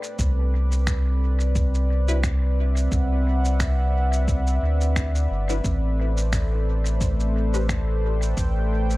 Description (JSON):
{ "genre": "ambient dub", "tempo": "88 BPM", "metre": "4/4", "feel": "swing 56% on 16ths", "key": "unclear", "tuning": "A4 = 438 Hz", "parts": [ { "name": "warm analog pad", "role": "sustained chords", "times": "0.0-9.0 s", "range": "A3 to G5", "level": "-29 LUFS", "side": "equal", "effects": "chorus" }, { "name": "electronic cabasa and finger snaps", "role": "drums", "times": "0.0-9.0 s", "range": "none", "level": "-33 LUFS", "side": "equal", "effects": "dub echo" }, { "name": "warm sub bass", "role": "bass", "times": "0.2-9.0 s", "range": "G1 to D2", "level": "-21 LUFS", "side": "equal", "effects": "none" }, { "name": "electronic kick drum", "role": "drums", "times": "0.2-8.5 s", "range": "none", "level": "-25 LUFS", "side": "equal", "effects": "none" }, { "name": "filtered dub chord stab", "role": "stabs", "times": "2.1-7.7 s", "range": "F#3 to B4", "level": "-34 LUFS", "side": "left 3 dB", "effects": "phaser, lush chorus, dub echo" } ], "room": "digital ambience", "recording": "none", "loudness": "-20 LUFS", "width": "side -19 dB against mid", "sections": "0.0-9.0 A section", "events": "none", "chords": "0.2 Cmaj9#11; 5.6 Am11" }